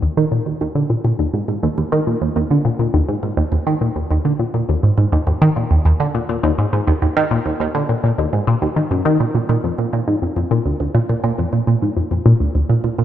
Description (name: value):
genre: ambient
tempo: 103 BPM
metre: 4/4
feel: straight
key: unclear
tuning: A4 = 440 Hz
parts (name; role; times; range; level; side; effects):
- tight sequenced synth; solo; 0.0-13.0 s; D2 to Eb3; -15 LUFS; equal; chorus, phaser, tape echo
room: wet plate reverb, RT60 3.0 s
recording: echo-heavy mix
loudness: -15 LUFS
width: side -11 dB against mid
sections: 0.0-13.0 A section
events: none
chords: none